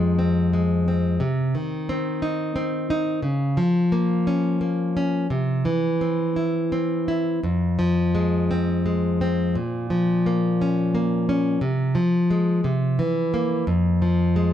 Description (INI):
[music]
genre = folk, solo fingerstyle acoustic guitar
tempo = 58 BPM (dotted quarters)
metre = 6/8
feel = rubato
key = F minor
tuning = A4 = 442 Hz
[part]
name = nylon-string guitar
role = solo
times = 0.0-14.5 s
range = F2 to G4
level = -20 LUFS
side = equal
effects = none
[sound]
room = moderate large studio reverb, RT60 1.2 s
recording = dark, warm production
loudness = -20 LUFS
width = side -10 dB against mid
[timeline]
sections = 0.0-14.5 A section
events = none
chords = 0.0 Fmadd9; 1.2 Cm; 3.2 Bbm/Db; 5.3 C; 7.4 Fm; 9.6 Bbm; 11.6 Fm/C; 12.7 C7; 13.7 Fm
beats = 0.17 | 1.20 2.22 | 3.24 4.27 | 5.31 6.36 | 7.43 8.50 | 9.55 10.60 | 11.63 12.65 | 13.68